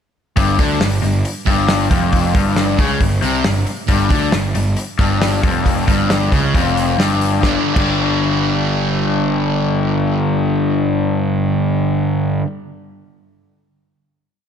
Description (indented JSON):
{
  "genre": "classic rock",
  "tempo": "136 BPM",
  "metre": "4/4",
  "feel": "straight",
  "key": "G mixolydian",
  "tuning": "A4 = 440 Hz",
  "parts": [
    { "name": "overdriven electric guitar", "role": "riff", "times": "0.4-12.5 s", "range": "F2 to G3", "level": "-18 LUFS", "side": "left 8 dB", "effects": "none" },
    { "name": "sludgy distorted guitar", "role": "riff", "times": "0.4-12.5 s", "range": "F2 to G4", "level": "-20 LUFS", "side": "right 8 dB", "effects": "overdrive" },
    { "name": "fuzz picked electric bass", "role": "bass", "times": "0.4-12.4 s", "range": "F1 to D2", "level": "-21 LUFS", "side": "equal", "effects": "overdrive" },
    { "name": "damped 70s drum kit", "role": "drums", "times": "0.4-7.9 s", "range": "crash cymbal, hi-hat, kick drum, snare drum", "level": "-19 LUFS", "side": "equal", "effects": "none" }
  ],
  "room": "moderate scoring stage reverb, RT60 1.9 s, studio reverb",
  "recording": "big arena sound",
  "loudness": "-14 LUFS",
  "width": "side -8 dB against mid",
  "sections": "0.4-7.4 riff; 7.4-11.0 final chord",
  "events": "none",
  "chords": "0.4 G5; 7.4 G",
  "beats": "| 0.37 0.81 1.25 1.69 | 2.13 2.57 3.01 3.45 | 3.89 4.33 4.77 5.21 | 5.65 6.09 6.54 6.98 | 7.42 7.86 8.31 8.75 | 9.20 9.64 10.09 10.53"
}